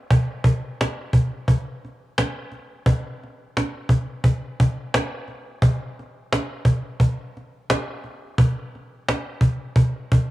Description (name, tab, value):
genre	hip hop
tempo	87 BPM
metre	4/4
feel	swing 57% on 16ths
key	none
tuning	none
part	cajon	drums	0.1-10.3 s	none	-19 LUFS	equal	none
room	light reverb, small room ambience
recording	home recording on cassette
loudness	-20 LUFS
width	side -17 dB against mid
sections	0.0-10.3 A section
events	none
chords	none